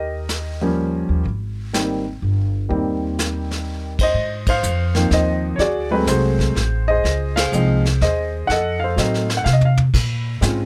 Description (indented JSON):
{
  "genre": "jazz piano trio",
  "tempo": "124 BPM",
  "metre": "3/4",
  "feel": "swing 66% on 8ths",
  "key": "Ab major",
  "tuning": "A4 = 439 Hz",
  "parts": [
    { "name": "warm upright piano", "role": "melody", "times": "0.0-10.7 s", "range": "Eb3 to Gb5", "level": "-23 LUFS", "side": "equal", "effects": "none" },
    { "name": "upright bass", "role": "bass", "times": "0.0-10.7 s", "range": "G1 to C3", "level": "-23 LUFS", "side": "equal", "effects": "none" },
    { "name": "vintage brush drum kit", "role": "drums", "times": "0.3-10.7 s", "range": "brushed snare drum, crash cymbal, hi-hat, kick drum, ride cymbal, snare drum, toms", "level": "-26 LUFS", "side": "equal", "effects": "none" }
  ],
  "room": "little or no reverb",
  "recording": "close, detailed microphones",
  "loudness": "-20 LUFS",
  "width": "mono",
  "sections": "0.0-4.2 A section; 4.2-10.7 B section",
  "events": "band accent 3.9, 4.4, 7.3; drum fill 9.5-9.9",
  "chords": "0.0 Eb9; 1.3 Abmaj7; 4.2 Ab6; 5.6 D7#11; 7.0 Dbmaj9; 8.5 F7b9; 9.9 Bbm9"
}